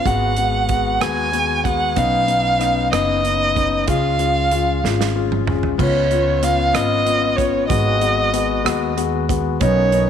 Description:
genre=six-eight pop ballad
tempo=63 BPM (dotted quarters)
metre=6/8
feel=straight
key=unclear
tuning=A4 = 439 Hz
part: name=warm violin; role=melody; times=0.0-10.1 s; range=Db5 to Ab5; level=-19 LUFS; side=right 2 dB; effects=none
part: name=warm concert grand piano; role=accompaniment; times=0.1-10.1 s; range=Ab3 to Gb4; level=-22 LUFS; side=left 12 dB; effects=none
part: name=upright bass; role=bass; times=0.1-10.1 s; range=F#1 to Eb2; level=-22 LUFS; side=right 2 dB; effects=none
part: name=natural country drum kit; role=drums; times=0.1-10.1 s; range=crash cymbal, hi-hat, kick drum, rim click, snare drum, toms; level=-25 LUFS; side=right 5 dB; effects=none
part: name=pedal harmonium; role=sustained chords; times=9.6-10.1 s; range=D#3 to C#4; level=-26 LUFS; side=right 1 dB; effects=none
room=moderate echo chamber reverb, RT60 2.4 s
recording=1960s-style stereo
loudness=-16 LUFS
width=side -8 dB against mid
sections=0.0-5.8 A section; 5.8-10.1 B section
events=drum fill 4.8-5.8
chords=0.1 Abm7; 2.0 Badd9; 3.9 Db; 5.8 Db7; 7.7 Abm7

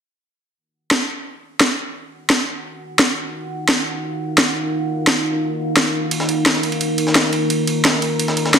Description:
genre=dark technical drum and bass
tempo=173 BPM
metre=4/4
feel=straight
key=Eb minor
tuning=A4 = 440 Hz
part: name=deep dark ambient pad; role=sustained chords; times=2.9-8.6 s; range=Eb4 to Bb5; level=-21 LUFS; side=equal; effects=chorus, built-in reverb
part: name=electronic snare drum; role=drums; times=0.9-8.6 s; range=none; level=-16 LUFS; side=equal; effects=small room reverb
part: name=breakbeat sampler-style drum kit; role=drums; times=6.1-8.6 s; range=ride cymbal, snare drum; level=-22 LUFS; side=right 2 dB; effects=high-pass filter on cymbals, small room reverb, high-pass filter on snare
room=wet digital room reverb, RT60 1.1 s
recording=dense, heavily limited modern master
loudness=-16 LUFS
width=side -7 dB against mid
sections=0.6-8.6 A section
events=filter sweep on ambient pad 0.6-8.6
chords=0.6 Ebmadd9

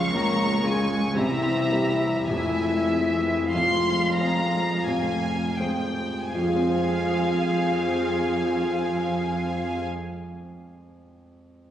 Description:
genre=classical, romantic movement for piano and orchestra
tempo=40-61 BPM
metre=3/4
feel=rubato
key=F minor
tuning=A4 = 440 Hz
part: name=dark chamber violin section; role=melody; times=0.0-9.8 s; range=G5 to Db6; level=-30 LUFS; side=left 1 dB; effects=none
part: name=warm grand piano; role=melody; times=0.0-11.7 s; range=F1 to C5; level=-29 LUFS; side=left 1 dB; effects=none
part: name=dark studio violin section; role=second line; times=0.0-9.8 s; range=E5 to Bb5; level=-30 LUFS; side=left 1 dB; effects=none
part: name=dark symphonic viola section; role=accompaniment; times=0.0-9.8 s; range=G3 to Ab4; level=-33 LUFS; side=right 1 dB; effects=none
part: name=warm chamber cello section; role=bass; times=0.0-9.8 s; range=E3 to Bb3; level=-32 LUFS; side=right 3 dB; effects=none
part: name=warm studio double bass section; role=bass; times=0.0-9.8 s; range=C2 to F2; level=-34 LUFS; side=right 3 dB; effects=none
part: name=dark French horn section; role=sustained chords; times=0.1-9.8 s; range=E4 to Bb4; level=-27 LUFS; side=left 2 dB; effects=none
part: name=timpani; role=percussion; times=2.3-9.8 s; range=none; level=barely audible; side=none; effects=none
room=wet concert hall reverb, RT60 2.2 s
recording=recorded on a phone in the room, club reverb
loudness=-22 LUFS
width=side -10 dB against mid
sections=0.0-6.3 A section; 6.3-10.5 B section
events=slowing down 0.0-6.3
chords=0.0 Db; 1.1 C7; 2.3 Fm

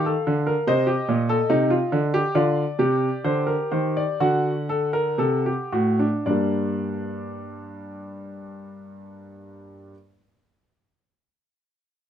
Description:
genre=classical, baroque-style 3-part fugue for grand piano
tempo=55-75 BPM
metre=4/4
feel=straight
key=G minor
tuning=A4 = 440 Hz
part: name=warm grand piano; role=solo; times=0.0-9.9 s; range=G2 to F#5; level=-21 LUFS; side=equal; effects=none
room=little or no reverb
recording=close, detailed microphones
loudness=-20 LUFS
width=side -9 dB against mid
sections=0.0-6.3 A section; 6.3-10.6 B section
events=slowing down 0.0-6.3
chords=0.0 N.C.; 0.7 Adim; 2.4 D7sus4; 4.2 D7; 6.3 Gm

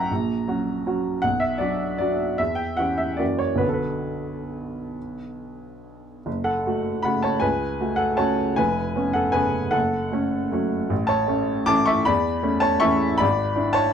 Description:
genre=classical, piano waltz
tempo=131-166 BPM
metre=3/4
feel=rubato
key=B minor, F# minor from 6.3 s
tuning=A4 = 440 Hz
part: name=clear upright piano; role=solo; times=0.0-13.9 s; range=E#1 to D6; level=-21 LUFS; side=equal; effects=none
room=light reverb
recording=dark, warm production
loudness=-20 LUFS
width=side -8 dB against mid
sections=0.0-6.3 A section; 6.3-13.9 B section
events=none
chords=0.0 F#/A#; 1.2 Bm; 2.4 C#dim/E; 3.2 F#7; 3.6 Bm; 6.3 F#m; 8.6 C#7/E#; 9.7 F#m; 10.9 A; 13.2 E7/G#

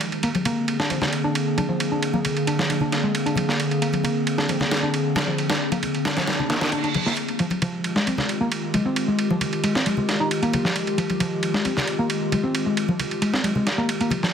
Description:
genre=breakbeat, breaks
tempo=134 BPM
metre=4/4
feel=straight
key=F dorian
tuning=A4 = 440 Hz
part: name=warbly tape-like pad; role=sustained chords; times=0.0-14.3 s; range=D3 to Ab4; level=-26 LUFS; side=equal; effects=chorus, built-in reverb, vintage 12-bit sampler grit
part: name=dusty soul sampler-style drum kit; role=drums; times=0.0-14.3 s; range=ride cymbal, snare drum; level=-26 LUFS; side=right 2 dB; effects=high-pass filter on cymbals, small room reverb, high-pass filter on snare
part: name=hollow-body short-scale picked electric bass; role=riff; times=0.2-14.3 s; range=F3 to Eb4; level=-25 LUFS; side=equal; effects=low-pass filter, ping-pong delay
part: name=congas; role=percussion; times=0.3-14.2 s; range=none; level=-29 LUFS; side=left 3 dB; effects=none
part: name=reverse cymbal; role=sound effects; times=6.7-7.2 s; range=none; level=-30 LUFS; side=right 6 dB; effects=none
room=light reverb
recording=heavily compressed radio sound, multiband compression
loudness=-20 LUFS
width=side -8 dB against mid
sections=0.0-14.3 A section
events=filter sweep on picked electric bass 0.0-14.3; reverse cymbal 6.7-7.2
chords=0.0 Bb9; 7.2 Fm9

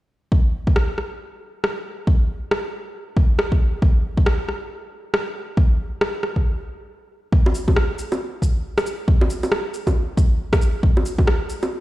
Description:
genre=future garage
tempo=137 BPM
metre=4/4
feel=swing 61% on 16ths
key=none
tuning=none
part: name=electronic kick drum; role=drums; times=0.3-11.3 s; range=none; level=-17 LUFS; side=equal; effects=overdrive
part: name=electronic rim click, bongos and shaker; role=drums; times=0.8-11.7 s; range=none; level=-24 LUFS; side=equal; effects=overdrive
room=light reverb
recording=played on a big sound system in a bare room, stone room reverb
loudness=-18 LUFS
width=side -16 dB against mid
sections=0.3-7.3 A section; 7.3-11.8 B section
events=stop 6.5-7.3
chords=none

